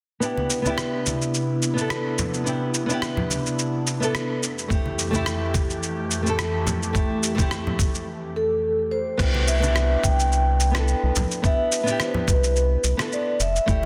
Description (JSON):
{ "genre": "sunset chillout", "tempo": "107 BPM", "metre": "4/4", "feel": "swing 55% on 16ths", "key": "C major", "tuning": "A4 = 440 Hz", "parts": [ { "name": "nylon-string guitar", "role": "accompaniment", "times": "0.2-13.9 s", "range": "A3 to A4", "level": "-30 LUFS", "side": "equal", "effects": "low-pass filter, delay" }, { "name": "airy breathy pad", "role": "sustained chords", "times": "0.5-9.2 s", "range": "F2 to G4", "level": "-30 LUFS", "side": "equal", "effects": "chorus" }, { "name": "dusty soul sampler-style drum kit", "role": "drums", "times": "0.2-13.8 s", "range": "cabasa, crash cymbal, rim click", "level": "-30 LUFS", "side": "equal", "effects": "soft clipping on snare" }, { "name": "congas", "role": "percussion", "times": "0.4-13.9 s", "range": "none", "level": "-32 LUFS", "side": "equal", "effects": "none" }, { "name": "electronic kick drum", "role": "drums", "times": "4.7-13.8 s", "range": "none", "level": "-25 LUFS", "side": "equal", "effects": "none" }, { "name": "vibraphone with soft mallets", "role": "melody", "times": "8.4-13.9 s", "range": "A4 to G5", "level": "-27 LUFS", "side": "equal", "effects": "delay" }, { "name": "round analog bass", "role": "bass", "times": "9.2-13.9 s", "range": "F1 to C2", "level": "-24 LUFS", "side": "equal", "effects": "tube saturation" } ], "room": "moderate lush hall reverb, RT60 1.7 s", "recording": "dense, heavily limited modern master", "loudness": "-23 LUFS", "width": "mono", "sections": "0.2-9.2 A section; 9.2-13.9 B section", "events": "filter sweep on analog synth pad 0.2-9.2", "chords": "0.2 Cmaj9; 4.4 Fmaj9; 9.2 Cmaj9" }